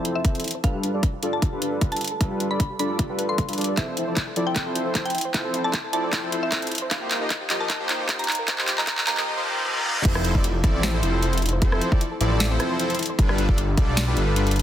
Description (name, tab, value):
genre	future bass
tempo	153 BPM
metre	4/4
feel	swing 53% on 16ths, half-time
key	unclear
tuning	A4 = 438 Hz
part	soft round pluck	arpeggios	0.0-14.6 s	D4 to C5	-34 LUFS	left 4 dB	chorus, sidechain pumping, tape echo
part	soft supersaw	riff	0.0-14.5 s	F3 to Eb5	-26 LUFS	equal	sidechain pumping, low-pass filter
part	trap drum kit	drums	0.1-14.6 s	crash cymbal, handclaps, hi-hat, rim click, snare drum	-27 LUFS	equal	soft clipping on snare, high-pass filter on snare, high-pass filter on hats, high-pass filter on cymbals, high-pass filter on room
part	mallet-like synth pluck	melody	0.2-9.2 s	E5 to C6	-31 LUFS	equal	chorus, sidechain pumping, dub echo
part	electronic kick drum	drums	0.2-13.9 s	none	-22 LUFS	equal	none
part	riser and reverse cymbal	sound effects	7.4-10.0 s	none	-33 LUFS	equal	none
part	wide detuned saw bass	bass	10.1-14.6 s	F1 to B1	-23 LUFS	equal	chorus, sidechain pumping
room	light reverb, digital ambience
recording	dense, heavily limited modern master, high-pass filter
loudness	-21 LUFS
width	side -11 dB against mid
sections	0.0-10.1 A section; 10.1-14.6 B section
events	build-up 0.0-10.1; filter sweep on supersaw synth 0.0-10.1; filter sweep on synth arpeggio sound 0.0-10.1; filter sweep 0.0-10.1; drum fill 3.8-9.3; reverse cymbal 9.3-10.1; drop 10.1-14.6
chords	0.0 Fmaj7; 0.6 G9; 3.8 Fmaj7; 6.9 Eb69; 10.1 Fmaj7; 13.2 G9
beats	0.25 | 0.64 1.03 1.42 1.81 | 2.21 2.60 2.99 3.38 | 3.77 4.17 4.56 4.95 | 5.34 5.74 6.13 6.52 | 6.91 7.30 7.70 8.09 | 8.48 8.87 9.27 9.66 | 10.05 10.44 10.83 11.23 | 11.62 12.01 12.40 12.79 | 13.19 13.58 13.97 14.36